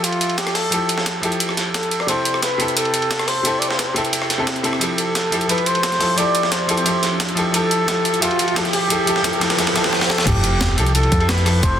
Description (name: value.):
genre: liquid drum and bass.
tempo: 176 BPM.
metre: 4/4.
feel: straight.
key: F lydian.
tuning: A4 = 442 Hz.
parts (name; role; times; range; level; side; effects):
mellow flugelhorn; melody; 0.0-11.8 s; F4 to D5; -22 LUFS; equal; dub echo.
bright concert grand piano; accompaniment; 0.0-11.8 s; C3 to E5; -22 LUFS; equal; none.
breakbeat sampler-style drum kit; drums; 0.0-11.7 s; crash cymbal, hi-hat, rim click, snare drum; -23 LUFS; equal; high-pass filter on hats, high-pass filter on snare, high-pass filter on cymbals, high-pass filter on room.
breakbeat sampler-style drum kit; drums; 0.0-11.7 s; hi-hat, ride cymbal, snare drum; -23 LUFS; right 1 dB; high-pass filter on cymbals, high-pass filter on snare, high-pass filter on hats, high-pass filter on room.
riser and sub drop; sound effects; 6.7-11.6 s; none; -27 LUFS; equal; none.
smooth synth bass; bass; 10.3-11.8 s; F1 to F2; -18 LUFS; equal; none.
electronic kick drum; drums; 10.3-11.7 s; none; -19 LUFS; equal; none.
room: moderate lush hall reverb, RT60 1.7 s.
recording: dense, heavily limited modern master.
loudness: -16 LUFS.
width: side -9 dB against mid.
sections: 0.0-10.3 A section; 10.3-11.8 B section.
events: build-up 0.0-10.3; riser 6.7-9.9; drum fill 9.9-10.3; drop 10.3-11.8; impact 10.3-11.6.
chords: 0.0 Fmaj9; 2.1 C6; 4.8 Fmaj9.